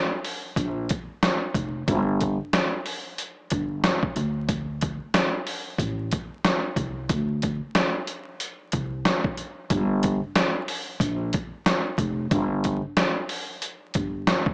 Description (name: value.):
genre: hip hop, boom-bap hip-hop.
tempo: 92 BPM.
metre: 4/4.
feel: swing 60% on 16ths.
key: unclear.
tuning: A4 = 440 Hz.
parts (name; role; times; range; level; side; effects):
trip hop sampler-style drum kit; drums; 0.2-14.5 s; hi-hat, kick drum, snare drum; -24 LUFS; equal; none.
upright bass; bass; 0.6-14.2 s; F1 to D2; -26 LUFS; equal; none.
room: moderate spring reverb, RT60 2.7 s.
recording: vinyl crackle, small speaker sound.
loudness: -23 LUFS.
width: side -31 dB against mid.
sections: 0.0-9.7 A section; 9.7-14.5 B section.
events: none.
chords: none.